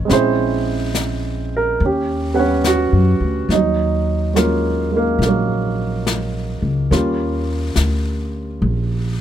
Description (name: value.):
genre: jazz ballad.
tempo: 70 BPM.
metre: 4/4.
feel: swing 66% on 8ths.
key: Eb minor from 3.5 s.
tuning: A4 = 440 Hz.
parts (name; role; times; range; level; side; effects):
warm grand piano; accompaniment; 0.0-9.2 s; Gb3 to F#5; -18 LUFS; right 2 dB; none.
upright bass; bass; 0.0-9.2 s; A#1 to F#2; -20 LUFS; equal; none.
jazz brush drum kit; drums; 0.1-9.2 s; brushed snare drum, hi-hat, snare drum; -26 LUFS; left 4 dB; none.
room: little or no reverb.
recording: close, detailed microphones.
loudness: -16 LUFS.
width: side -10 dB against mid.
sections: 0.0-3.5 A section; 3.5-9.2 B section.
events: none.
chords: 0.1 A#m7b5; 1.8 D#7alt; 3.5 Ebm11; 6.9 Eb7.